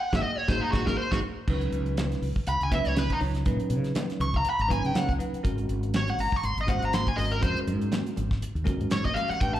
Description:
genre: electric jazz fusion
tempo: 121 BPM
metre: 4/4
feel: swing 56% on 16ths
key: unclear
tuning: A4 = 436 Hz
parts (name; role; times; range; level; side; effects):
- smooth overdriven lead guitar; melody; 0.0-9.6 s; Eb4 to C#6; -29 LUFS; equal; slapback echo, analog delay
- bell-like tine electric piano; accompaniment; 0.1-9.6 s; F#3 to C#5; -33 LUFS; equal; fast stereo tremolo, slapback echo
- mellow fretless electric bass; bass; 0.1-9.6 s; Ab1 to C#3; -29 LUFS; equal; none
- damped 70s drum kit; drums; 0.1-9.6 s; crash cymbal, hi-hat, kick drum, snare drum; -30 LUFS; equal; none
- congas; percussion; 0.1-9.5 s; none; -37 LUFS; right 2 dB; slapback echo
room: light reverb, small room ambience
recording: live gig heard through the venue's PA, club reverb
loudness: -24 LUFS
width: side -12 dB against mid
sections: 0.0-1.5 A section; 1.5-9.6 A section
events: band accent 0.0-1.5; lead electric guitar solo 0.0-9.6; drum fill 8.9-9.4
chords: 0.0 Ab5; 1.5 C#9sus4; 5.4 G#9sus4

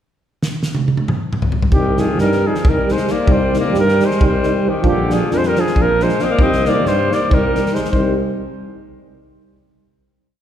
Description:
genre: balkan folk, Balkan brass band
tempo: 270 BPM (eighths)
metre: 7/8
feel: straight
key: C minor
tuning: A4 = 443 Hz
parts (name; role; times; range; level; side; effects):
- loose indie drum kit; percussion; 0.4-8.2 s; kick drum, snare drum, toms; -19 LUFS; equal; none
- clear flugelhorn; melody; 1.7-8.2 s; G4 to Eb5; -19 LUFS; equal; none
- clear alto saxophone; second line; 1.7-8.2 s; D3 to C4; -22 LUFS; left 2 dB; none
- mellow euphonium; accompaniment; 1.7-8.2 s; F3 to G3; -23 LUFS; right 4 dB; none
- warm euphonium; accompaniment; 1.7-8.2 s; D4 to Eb4; -24 LUFS; left 4 dB; none
- mellow tuba; bass; 1.7-8.2 s; Bb1 to G2; -21 LUFS; equal; none
room: wet concert hall reverb, RT60 2.2 s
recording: heard from further back in the room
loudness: -14 LUFS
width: side -10 dB against mid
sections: 0.2-1.7 pickup bar; 1.7-7.9 A section; 7.9-9.5 final chord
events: drum fill 0.4-1.7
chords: 0.2 N.C.; 1.7 Cm; 4.8 Bb; 6.4 Cm

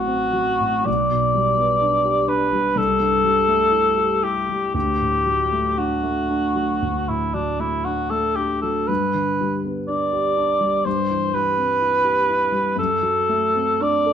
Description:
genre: classical, romantic duo for cor anglais and grand piano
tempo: 55-65 BPM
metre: 4/4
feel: rubato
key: G major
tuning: A4 = 440 Hz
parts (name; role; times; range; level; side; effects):
- mellow cor anglais; melody; 0.0-14.1 s; D4 to D5; -19 LUFS; equal; none
- dark concert grand piano; accompaniment; 0.0-14.1 s; A1 to A4; -24 LUFS; equal; none
room: moderate stone room reverb, RT60 1.0 s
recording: none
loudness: -18 LUFS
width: side -8 dB against mid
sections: 0.0-14.1 A section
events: none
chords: 0.0 F#dim/A; 0.9 G/B; 2.8 Am7/C; 4.7 D; 8.9 G; 10.9 C/G; 12.8 D7/F#

